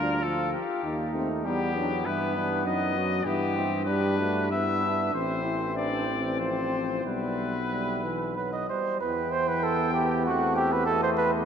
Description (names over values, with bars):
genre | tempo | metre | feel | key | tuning
classical, brass quintet | 90-101 BPM | 3/4 | rubato | E minor | A4 = 440 Hz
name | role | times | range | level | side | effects
clear trumpet | melody | 0.0-11.4 s | G4 to G5 | -31 LUFS | left 4 dB | none
warm flugelhorn | second line | 0.0-11.3 s | B3 to D#5 | -29 LUFS | right 3 dB | none
bright trombone | accompaniment | 0.0-11.4 s | E3 to B3 | -34 LUFS | right 2 dB | none
clear French horn | accompaniment | 0.0-11.4 s | B3 to G4 | -33 LUFS | left 2 dB | none
mellow tuba | bass | 0.0-11.4 s | A1 to G2 | -32 LUFS | equal | none
room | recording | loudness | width
wet cathedral reverb, RT60 5.7 s | in a vast, echoing space | -25 LUFS | side -7 dB against mid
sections
0.0-9.0 A section; 9.0-11.4 B section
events
none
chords
0.0 Bb/D; 0.8 Eb; 1.5 Em; 2.7 B/F#; 3.3 Em/G; 5.1 Am; 6.4 F/A; 7.0 Em/B; 8.4 B5; 9.0 Em; 10.3 F#m7b5/E; 10.9 B7/E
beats
0.23 0.84 | 1.46 2.06 2.66 | 3.26 3.87 4.52 | 5.14 5.76 6.40 | 7.05 7.71 8.37 | 9.02 9.65 10.27 | 10.88